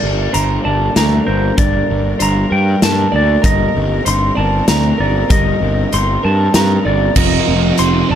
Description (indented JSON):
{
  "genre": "post-rock",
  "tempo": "97 BPM",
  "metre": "3/4",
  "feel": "straight",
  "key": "G minor",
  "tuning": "A4 = 440 Hz",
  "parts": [
    { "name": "clean lap steel guitar", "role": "melody", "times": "0.0-8.2 s", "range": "C5 to C6", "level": "-18 LUFS", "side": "right 1 dB", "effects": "analog delay" },
    { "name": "clear symphonic string section", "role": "sustained chords", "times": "0.0-8.2 s", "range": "F3 to Bb4", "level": "-26 LUFS", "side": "left 2 dB", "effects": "none" },
    { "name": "clean electric guitar", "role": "arpeggios", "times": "0.0-8.2 s", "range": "G2 to Bb4", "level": "-22 LUFS", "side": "left 4 dB", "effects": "analog delay" },
    { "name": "electric guitar through a small old amp", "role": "arpeggios", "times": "0.0-8.2 s", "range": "Bb4 to D5", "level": "-25 LUFS", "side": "right 8 dB", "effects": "analog delay" },
    { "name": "fuzz picked electric bass", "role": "bass", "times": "0.0-8.2 s", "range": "F1 to G2", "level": "-16 LUFS", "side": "equal", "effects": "overdrive" },
    { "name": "big rock drum kit", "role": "drums", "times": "0.3-7.9 s", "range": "crash cymbal, hi-hat, kick drum, snare drum", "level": "-18 LUFS", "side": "equal", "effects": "none" },
    { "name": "thick fuzz guitar", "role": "riff", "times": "7.2-8.2 s", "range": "F2 to C3", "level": "-17 LUFS", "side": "right 14 dB", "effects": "distortion" }
  ],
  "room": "little or no reverb",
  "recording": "dark, warm production",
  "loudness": "-12 LUFS",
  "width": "side -9 dB against mid",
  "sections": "0.0-8.2 A section",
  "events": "build-up 0.0-8.2",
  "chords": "0.0 Gm; 3.5 Cm7/G; 7.2 F7sus4"
}